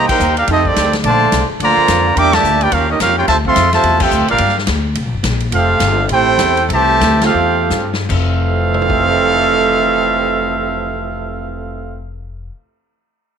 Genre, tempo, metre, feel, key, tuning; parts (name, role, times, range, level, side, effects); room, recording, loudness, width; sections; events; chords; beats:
jazz, big band swing; 150-215 BPM; 4/4; swing 61% on 8ths; F major; A4 = 440 Hz
clear trumpet section; melody; 0.0-12.1 s; C4 to D6; -14 LUFS; equal
warm trombone section; second line; 0.0-12.1 s; F2 to G4; -19 LUFS; right 10 dB
upright bass; bass; 0.0-12.5 s; F1 to G2; -19 LUFS; left 2 dB
swinging big-band drum kit; drums; 0.1-9.0 s; crash cymbal, hi-hat, kick drum, ride cymbal, snare drum, toms; -21 LUFS; left 2 dB
light reverb, studio ambience; 1960s-style stereo; -11 LUFS; side -7 dB against mid
0.0-8.1 A section; 8.1-11.3 B section
band accent 0.1, 2.3, 4.0, 7.2; slowing down 5.5-8.1; drum fill 7.7-8.1
0.5 F13; 1.0 Bbmaj9; 2.2 Em7b5; 2.7 Eb9; 3.3 Dm9; 4.4 Gm7; 5.0 C5; 5.5 Fmaj9; 8.1 Fmaj7
0.20 0.48 0.76 | 1.04 1.32 1.60 1.88 | 2.16 2.44 2.72 3.00 | 3.28 3.56 3.84 4.12 | 4.40 4.68 4.96 5.24 | 5.52 5.80 6.09 6.38 | 6.69 7.01 7.34 7.70 | 8.09 8.49 8.89 9.29 | 9.69 10.09 10.49 10.89